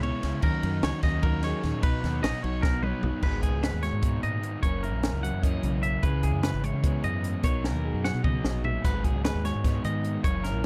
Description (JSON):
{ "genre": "math rock and midwest emo", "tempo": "300 BPM (eighths)", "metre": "7/8", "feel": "straight", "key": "unclear", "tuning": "A4 = 439 Hz", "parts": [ { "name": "mellow electric guitar", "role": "accompaniment", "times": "0.0-10.7 s", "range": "F#2 to C#5", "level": "-34 LUFS", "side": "equal", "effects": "none" }, { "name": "twangy electric guitar", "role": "arpeggios", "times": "0.0-10.7 s", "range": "G#4 to F#5", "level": "-36 LUFS", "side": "equal", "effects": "none" }, { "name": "raw garage guitar", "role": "riff", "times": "0.0-10.7 s", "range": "F#2 to E4", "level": "-38 LUFS", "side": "equal", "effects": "overdrive" }, { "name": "deep dub fingered electric bass", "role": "bass", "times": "0.0-10.7 s", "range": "F#1 to C#3", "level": "-33 LUFS", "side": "equal", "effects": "none" }, { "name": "compact cocktail drum kit", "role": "drums", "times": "0.0-10.5 s", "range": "crash cymbal, hi-hat, kick drum, ride cymbal, snare drum, splash cymbal, toms", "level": "-30 LUFS", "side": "equal", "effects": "none" } ], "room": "little or no reverb", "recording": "dark, warm production", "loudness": "-27 LUFS", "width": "mono", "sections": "0.0-3.2 A section; 3.2-10.7 B section", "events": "drum fill 2.6-3.2, 7.6-8.8", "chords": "0.4 D#m7; 1.8 Bmaj9; 3.2 G#m7; 4.6 F#7; 6.0 C#m7; 7.4 Bmaj7; 8.8 G#m7" }